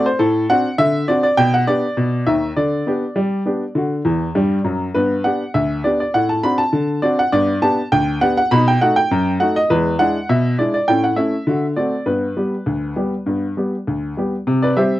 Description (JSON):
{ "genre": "ragtime piano", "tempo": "101 BPM", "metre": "2/4", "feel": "straight", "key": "G major", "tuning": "A4 = 440 Hz", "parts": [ { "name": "clear upright piano", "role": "solo", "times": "0.0-15.0 s", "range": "D2 to B5", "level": "-15 LUFS", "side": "equal", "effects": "none" } ], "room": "light reverb", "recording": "dry, close 1970s-style studio recording", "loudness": "-15 LUFS", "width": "side -15 dB against mid", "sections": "0.0-14.5 A section", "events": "upright piano fill 4.1-5.0", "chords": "0.0 D7/A; 1.4 G/B; 2.6 G/D; 3.8 D; 5.0 G; 6.1 D7/A; 7.3 G; 8.5 B7; 9.7 E7; 10.9 A; 11.5 D7; 12.1 G; 14.5 C" }